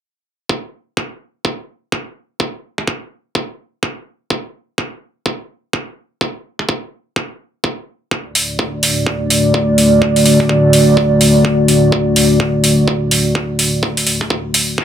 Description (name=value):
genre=bass house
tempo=126 BPM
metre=4/4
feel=swing 61% on 16ths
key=unclear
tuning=A4 = 440 Hz
part: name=electronic kick drum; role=drums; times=0.5-14.8 s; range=none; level=-19 LUFS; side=right 1 dB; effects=high-pass filter on kick, high-pass filter on room
part: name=dark analog pad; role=sustained chords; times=8.1-14.8 s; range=D3 to D5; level=-12 LUFS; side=equal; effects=wide subtle chorus, sidechain pumping
part: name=electronic hi-hat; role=drums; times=8.4-14.7 s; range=none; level=-15 LUFS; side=right 1 dB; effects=none
part: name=reverse cymbal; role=sound effects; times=14.8 s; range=none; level=-21 LUFS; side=left 4 dB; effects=none
room=moderate plate reverb, RT60 1.7 s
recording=none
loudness=-13 LUFS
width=side -10 dB against mid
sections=0.5-14.8 A section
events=none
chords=0.5 N.C.; 8.1 D